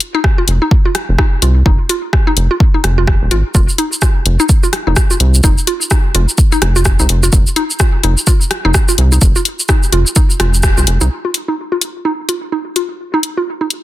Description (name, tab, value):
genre	minimal techno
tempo	127 BPM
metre	4/4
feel	swing 60% on 16ths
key	unclear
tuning	A4 = 440 Hz
part	house drum kit	drums	0.0-13.8 s	hi-hat, rim click, shaker	-17 LUFS	left 1 dB	overdrive
part	mallet-like synth pluck	riff	0.1-13.7 s	Eb4 to F4	-18 LUFS	equal	chorus, sidechain pumping, dub echo
part	electronic kick drum	drums	0.2-10.7 s	none	-11 LUFS	equal	overdrive
part	rubbery square bass	bass	0.5-11.1 s	Eb1 to C2	-12 LUFS	equal	sidechain pumping
room	digital ambience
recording	dense, heavily limited modern master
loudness	-10 LUFS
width	side -15 dB against mid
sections	0.0-11.1 A section; 11.1-13.8 B section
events	band accent 10.6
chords	0.0 F7(no3); 11.1 Ebsus2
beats	0.24 0.71 1.19 | 1.66 2.13 2.60 3.08 | 3.55 4.02 4.49 4.96 | 5.44 5.91 6.38 6.85 | 7.33 7.80 8.27 8.74 | 9.22 9.69 10.16 10.63 | 11.11 11.58 12.05 12.52 | 13.00 13.47